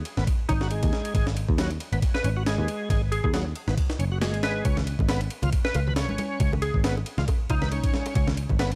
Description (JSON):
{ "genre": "breakbeat, breaks", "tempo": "137 BPM", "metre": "4/4", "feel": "swing 55% on 16ths", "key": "G# dorian", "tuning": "A4 = 441 Hz", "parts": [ { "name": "breakbeat sampler-style drum kit", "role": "drums", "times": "0.1-8.8 s", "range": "kick drum, ride cymbal, snare drum", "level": "-29 LUFS", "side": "equal", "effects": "small room reverb" }, { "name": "bright tonewheel organ", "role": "riff", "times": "0.2-8.7 s", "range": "F#3 to B4", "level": "-35 LUFS", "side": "equal", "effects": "overdrive, chorus vibrato, slow rotary speaker, vintage 12-bit sampler grit, dub echo" }, { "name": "picked electric bass", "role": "bass", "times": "0.2-8.8 s", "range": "F#1 to D#2", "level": "-29 LUFS", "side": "equal", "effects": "tube saturation" }, { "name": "glassy wavetable pluck", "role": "melody", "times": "0.5-7.8 s", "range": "D#4 to B4", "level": "-36 LUFS", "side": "equal", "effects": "chorus, AM radio sound, vintage 12-bit sampler grit, dub echo" }, { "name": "bongos and congas", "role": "percussion", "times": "4.7-8.6 s", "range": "none", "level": "-37 LUFS", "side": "equal", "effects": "none" } ], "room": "digital ambience", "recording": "vinyl crackle", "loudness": "-25 LUFS", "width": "mono", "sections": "0.0-8.8 A section", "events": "none", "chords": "0.0 G#7(no3); 4.7 C#7(no3)" }